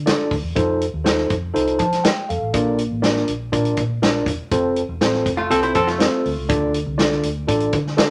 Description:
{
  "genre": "uptempo 1960s-style soul",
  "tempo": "121 BPM",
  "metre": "4/4",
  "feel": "straight",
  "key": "F major",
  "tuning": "A4 = 440 Hz",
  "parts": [
    { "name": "vintage muted fingered electric bass", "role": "bass", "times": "0.0-8.1 s", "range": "E1 to F3", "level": "-29 LUFS", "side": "equal", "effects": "none" },
    { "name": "mellow tine electric piano", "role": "accompaniment", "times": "0.1-8.1 s", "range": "D3 to A5", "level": "-23 LUFS", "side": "equal", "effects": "none" },
    { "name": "vintage drum kit", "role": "drums", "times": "0.1-8.1 s", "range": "hi-hat, kick drum, snare drum", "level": "-24 LUFS", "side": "equal", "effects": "none" },
    { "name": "archtop guitar, miked and amplified", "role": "riff", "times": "5.4-6.5 s", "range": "A3 to C5", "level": "-22 LUFS", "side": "equal", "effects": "none" }
  ],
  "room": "light reverb",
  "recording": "none",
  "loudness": "-20 LUFS",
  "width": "mono",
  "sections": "0.0-8.1 A section",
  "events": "none",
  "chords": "0.0 Dm; 0.6 F7; 2.5 Bb; 4.5 F; 6.5 Dm",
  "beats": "0.06 | 0.56 1.05 1.55 2.04 | 2.54 3.03 3.53 4.02 | 4.52 5.01 5.51 6.00 | 6.50 6.99 7.49 7.98"
}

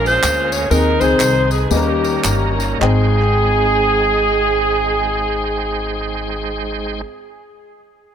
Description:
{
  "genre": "uptempo gospel",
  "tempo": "102-131 BPM",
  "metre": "4/4",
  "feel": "swing 62% on 8ths",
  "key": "Ab major",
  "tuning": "A4 = 440 Hz",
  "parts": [
    { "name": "mellow saxophone section", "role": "melody", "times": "0.0-7.0 s", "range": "Bb3 to Db5", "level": "-17 LUFS", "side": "right 1 dB", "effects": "dub echo" },
    { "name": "bright tonewheel organ", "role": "sustained chords", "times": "0.0-7.0 s", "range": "G3 to G5", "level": "-26 LUFS", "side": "right 3 dB", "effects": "slow rotary speaker, overdrive, chorus vibrato" },
    { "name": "upright bass", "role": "bass", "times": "0.0-7.0 s", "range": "G1 to Eb2", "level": "-20 LUFS", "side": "equal", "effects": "none" },
    { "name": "tambourine and handclaps", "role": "percussion", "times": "0.1-3.2 s", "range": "none", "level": "-25 LUFS", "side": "right 1 dB", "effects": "dub echo" },
    { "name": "warm baby grand piano", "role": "accompaniment", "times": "0.7-7.0 s", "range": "Ab1 to G5", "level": "-22 LUFS", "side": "left 5 dB", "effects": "none" }
  ],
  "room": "little or no reverb",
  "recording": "echo-heavy mix",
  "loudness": "-14 LUFS",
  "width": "side -8 dB against mid",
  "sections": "0.0-2.8 A section; 2.8-7.5 B section",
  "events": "slowing down 0.0-2.8",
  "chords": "0.0 Bbm7; 0.7 Ab; 1.7 Eb7; 2.8 Abmaj7",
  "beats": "0.24 | 0.71 1.20 1.71 2.25 | 2.81 3.40 3.99 4.58 | 5.16 5.75 6.33 6.92"
}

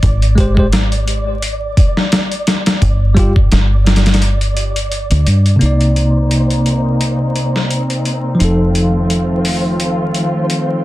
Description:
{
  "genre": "trip hop",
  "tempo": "86 BPM",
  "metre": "4/4",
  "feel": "swing 56% on 16ths",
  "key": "C minor",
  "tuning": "A4 = 440 Hz",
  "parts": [
    { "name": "deep dub fingered electric bass", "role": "bass", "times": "0.0-10.8 s", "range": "F1 to G2", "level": "-14 LUFS", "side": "equal", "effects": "tube saturation" },
    { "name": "dusty soul sampler-style drum kit", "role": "drums", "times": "0.0-10.7 s", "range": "hi-hat, kick drum, snare drum", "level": "-15 LUFS", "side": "equal", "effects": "overdrive, high-pass filter on hats, high-pass filter on kick, high-pass filter on snare, high-pass filter on room" },
    { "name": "flickering grainy texture", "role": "texture", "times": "0.0-10.8 s", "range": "C5 to D5", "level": "-26 LUFS", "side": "equal", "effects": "built-in reverb" },
    { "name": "bell-like tine electric piano", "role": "accompaniment", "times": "0.4-10.8 s", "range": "C3 to D5", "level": "-16 LUFS", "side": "equal", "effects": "tremolo, tape echo" },
    { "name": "warm studio string section", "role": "sustained chords", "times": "5.6-10.8 s", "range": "Eb3 to F4", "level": "-21 LUFS", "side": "equal", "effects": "low-pass filter" }
  ],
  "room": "little or no reverb",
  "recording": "dense, heavily limited modern master, vinyl crackle",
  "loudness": "-12 LUFS",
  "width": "side -16 dB against mid",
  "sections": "0.0-5.6 A section; 5.6-10.8 B section",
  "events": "break 4.2-5.6; filter sweep on string section 5.6-10.8",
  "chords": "0.0 N.C.; 2.8 G5; 5.6 Cm9; 8.4 F7",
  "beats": "| 0.03 0.72 1.42 2.12 | 2.82 3.52 4.21 4.91 | 5.61 6.31 7.00 7.70 | 8.40 9.10 9.79 10.49"
}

